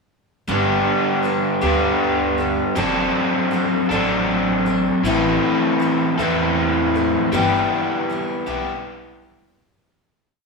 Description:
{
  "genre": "folk rock and heartland rock",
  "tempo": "53 BPM (dotted quarters)",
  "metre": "6/8",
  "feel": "straight",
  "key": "G major",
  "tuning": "A4 = 440 Hz",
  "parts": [
    { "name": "picked twelve-string acoustic guitar", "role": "accompaniment", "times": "0.5-9.6 s", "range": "G2 to A4", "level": "-27 LUFS", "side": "left 4 dB", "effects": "none" },
    { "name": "crunchy overdriven guitar", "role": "riff", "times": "0.5-9.6 s", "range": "G2 to A4", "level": "-18 LUFS", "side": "equal", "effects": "none" },
    { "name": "upright bass", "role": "bass", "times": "0.5-9.4 s", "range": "F#1 to E2", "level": "-28 LUFS", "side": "right 1 dB", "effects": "none" }
  ],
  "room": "light reverb, small room ambience",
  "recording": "rough home demo mix",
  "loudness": "-17 LUFS",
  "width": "side -3 dB against mid",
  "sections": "0.5-9.6 verse",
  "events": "fade-out 7.3-9.6",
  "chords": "0.5 Gadd9; 2.8 D7/F#; 5.0 Am; 7.3 Em7/G"
}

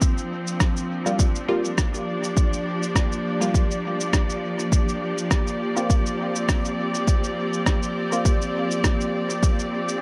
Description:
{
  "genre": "ambient dub",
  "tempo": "102 BPM",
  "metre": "4/4",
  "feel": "swing 56% on 16ths",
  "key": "G minor",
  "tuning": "A4 = 440 Hz",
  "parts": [
    { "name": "rich studio string section", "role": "sustained chords", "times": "0.0-10.0 s", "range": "F3 to D5", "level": "-28 LUFS", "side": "equal", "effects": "none" },
    { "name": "electronic kick drum", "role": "drums", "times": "0.0-9.6 s", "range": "none", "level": "-23 LUFS", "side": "equal", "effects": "overdrive" },
    { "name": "electronic shaker and rim click", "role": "drums", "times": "0.0-10.0 s", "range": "none", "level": "-31 LUFS", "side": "equal", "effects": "dub echo" },
    { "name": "filtered dub chord stab", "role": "stabs", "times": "1.1-8.3 s", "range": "G3 to F4", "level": "-31 LUFS", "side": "equal", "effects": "phaser, dub echo" }
  ],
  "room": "light reverb",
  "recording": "none",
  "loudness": "-23 LUFS",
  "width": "mono",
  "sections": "0.0-10.0 A section",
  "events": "none",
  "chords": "0.0 Gm7"
}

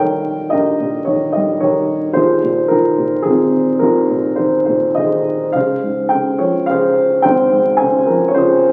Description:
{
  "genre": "classical, lyrical solo piano",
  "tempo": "107 BPM",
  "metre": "3/4",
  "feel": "rubato",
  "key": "Ab major",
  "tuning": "A4 = 438 Hz",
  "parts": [
    { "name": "dark upright piano", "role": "solo", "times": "0.0-8.7 s", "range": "Ab1 to Ab5", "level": "-15 LUFS", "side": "equal", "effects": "none" }
  ],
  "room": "wet recital hall reverb, RT60 1.5 s",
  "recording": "very old 78 rpm record, vinyl crackle",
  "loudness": "-15 LUFS",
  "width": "mono",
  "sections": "0.0-8.7 A section",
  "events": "none",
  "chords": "0.0 Eb7; 2.2 Ab69/Eb; 5.5 Dbmaj7"
}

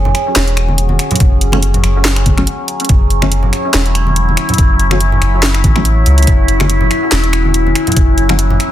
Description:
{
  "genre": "deep dubstep",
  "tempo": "142 BPM",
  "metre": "4/4",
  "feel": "swing 55% on 16ths, half-time",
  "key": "F# minor",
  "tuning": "A4 = 436 Hz",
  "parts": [
    { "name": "overtone-sweeping drone", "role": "sustained chords", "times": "0.0-8.7 s", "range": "F#3 to G#4", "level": "-17 LUFS", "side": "left 2 dB", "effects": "chorus, built-in reverb, phaser" },
    { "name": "soft dub sub bass", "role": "bass", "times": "0.0-8.6 s", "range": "E1 to C#2", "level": "-13 LUFS", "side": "equal", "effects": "none" },
    { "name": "garage drum kit", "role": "drums", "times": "0.1-8.7 s", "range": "finger snaps, handclaps, hi-hat, snare drum", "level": "-16 LUFS", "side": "equal", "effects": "overdrive" },
    { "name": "congas", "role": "percussion", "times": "0.1-8.6 s", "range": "none", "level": "-20 LUFS", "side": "right 2 dB", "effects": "none" },
    { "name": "electronic kick drum", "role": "drums", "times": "1.2-8.1 s", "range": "none", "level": "-11 LUFS", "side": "equal", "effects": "none" },
    { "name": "filtered dub chord stab", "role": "stabs", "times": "1.5-8.3 s", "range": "F#3 to C#4", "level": "-22 LUFS", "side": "left 1 dB", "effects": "phaser, wide subtle chorus, dub echo" }
  ],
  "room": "little or no reverb",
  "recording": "dense, heavily limited modern master",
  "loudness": "-10 LUFS",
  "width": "side -12 dB against mid",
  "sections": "0.0-8.7 A section",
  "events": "none",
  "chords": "0.0 F#m"
}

